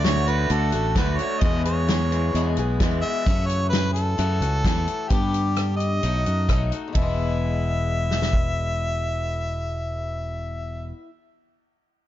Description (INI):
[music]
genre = folk rock and heartland rock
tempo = 130 BPM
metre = 4/4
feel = straight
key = E major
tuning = A4 = 440 Hz
[part]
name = clear harmonica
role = melody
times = 0.0-10.9 s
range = G4 to E5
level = -28 LUFS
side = equal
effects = plate reverb, tape echo
[part]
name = picked swing-style acoustic guitar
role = accompaniment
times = 0.0-11.1 s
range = E2 to G#4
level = -31 LUFS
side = left 6 dB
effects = plate reverb
[part]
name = electric guitar through a small old amp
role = riff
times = 0.0-3.2 s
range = E2 to G#4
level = -27 LUFS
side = right 1 dB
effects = none
[part]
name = fingered electric bass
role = bass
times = 0.0-10.9 s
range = E1 to G2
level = -24 LUFS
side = equal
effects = none
[part]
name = natural country drum kit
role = drums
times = 0.0-8.4 s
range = hi-hat, kick drum, ride cymbal, rim click, snare drum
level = -24 LUFS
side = equal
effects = none
[sound]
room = light reverb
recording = dark, warm production, nothing above 7.5 kHz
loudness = -21 LUFS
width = side -13 dB against mid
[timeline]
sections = 0.0-6.9 A section; 6.9-10.7 B section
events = none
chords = 0.0 D; 1.4 E; 3.2 F#m7; 5.1 G; 6.0 B7; 6.9 E